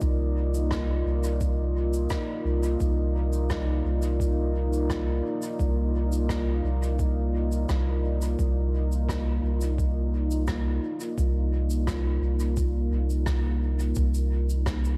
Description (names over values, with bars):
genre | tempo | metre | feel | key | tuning
ambient dub | 86 BPM | 4/4 | straight | C minor | A4 = 440 Hz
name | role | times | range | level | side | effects
deep dark ambient pad | sustained chords | 0.0-15.0 s | Bb3 to D5 | -33 LUFS | equal | chorus, built-in reverb
soft dub sub bass | bass | 0.0-15.0 s | C2 | -28 LUFS | equal | tube saturation
electronic kick drum | drums | 0.0-14.8 s | none | -33 LUFS | equal | overdrive, studio reverb, cassette tape
shaker and rim click | drums | 0.0-15.0 s | none | -42 LUFS | equal | studio reverb, cassette tape, dub echo
room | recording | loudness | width
light reverb | home recording on cassette | -26 LUFS | mono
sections
0.0-14.0 A section; 14.0-15.0 B section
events
none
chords
0.0 Cm11; 14.0 Cm7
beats
| 0.01 0.71 1.41 2.11 | 2.80 3.50 4.20 4.90 | 5.59 6.29 6.99 7.69 | 8.39 9.08 9.78 10.48 | 11.18 11.87 12.57 13.27 | 13.97 14.66